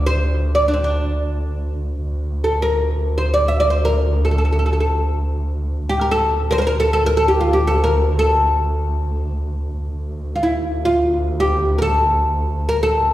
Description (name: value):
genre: Turkish makam ensemble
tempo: free time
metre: none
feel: none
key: D makam nihavent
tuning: A4 = 440 Hz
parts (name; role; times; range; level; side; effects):
- oud; melody; 0.0-13.1 s; C4 to E5; -18 LUFS; equal; analog delay
- rich double bass; drone; 0.0-13.1 s; D2; -20 LUFS; equal; none
room: wet recital hall reverb, RT60 1.5 s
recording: heard from further back in the room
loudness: -16 LUFS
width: side -14 dB against mid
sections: 0.0-2.0 A section; 2.0-13.1 A section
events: none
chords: none